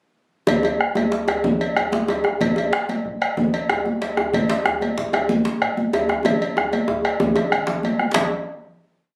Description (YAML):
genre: west african traditional, West African drum ensemble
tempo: 125 BPM (dotted quarters)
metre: 12/8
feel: straight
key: none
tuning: none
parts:
  - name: bombo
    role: percussion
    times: 0.5-8.3 s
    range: none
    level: -26 LUFS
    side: equal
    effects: none
  - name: congas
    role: percussion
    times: 0.5-8.3 s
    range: none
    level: -26 LUFS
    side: equal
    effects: none
  - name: cowbell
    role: percussion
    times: 0.5-8.3 s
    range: none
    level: -28 LUFS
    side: equal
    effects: none
  - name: djembe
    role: percussion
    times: 0.5-8.3 s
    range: none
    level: -33 LUFS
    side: equal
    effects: none
  - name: djembe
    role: percussion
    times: 0.5-8.3 s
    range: none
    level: -26 LUFS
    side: equal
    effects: none
room: wet studio reverb, RT60 0.6 s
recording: recorded on a phone in the room, club reverb, compression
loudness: -21 LUFS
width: mono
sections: 0.5-8.2 A section; 8.2-9.2 final hit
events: drum fill 6.3-8.2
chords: none